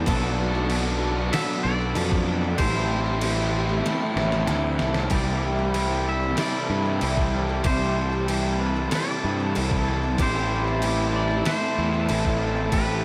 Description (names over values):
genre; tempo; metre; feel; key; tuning
rock, shoegaze and dream pop; 95 BPM; 4/4; straight; unclear; A4 = 438 Hz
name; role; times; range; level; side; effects
warm brass ensemble; sustained chords; 0.0-13.0 s; C4 to A5; -37 LUFS; equal; none
picked twelve-string acoustic guitar; arpeggios; 0.0-13.0 s; G4 to A4; -36 LUFS; equal; subtle chorus, delay
crunchy overdriven guitar; riff; 0.0-13.0 s; A2 to F#4; -31 LUFS; equal; analog chorus
overdriven electric guitar; riff; 0.0-13.0 s; A2 to F#4; -32 LUFS; equal; reverse reverb
fuzz picked electric bass; bass; 0.0-13.0 s; A1 to G2; -28 LUFS; equal; overdrive
twangy electric guitar; melody; 0.1-13.0 s; A4 to E5; -35 LUFS; equal; delay
detuned 8-bit digital drum machine; drums; 0.1-12.9 s; crash cymbal, kick drum, snare drum; -32 LUFS; equal; none
room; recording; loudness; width
wet huge ambient reverb, RT60 7.5 s; dreamy mix soaked in reverb; -24 LUFS; mono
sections
0.0-5.1 A section; 5.1-13.0 B section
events
drum fill 3.9-5.1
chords
0.1 Bm7b5; 2.6 Am; 5.1 Cadd9; 10.2 Am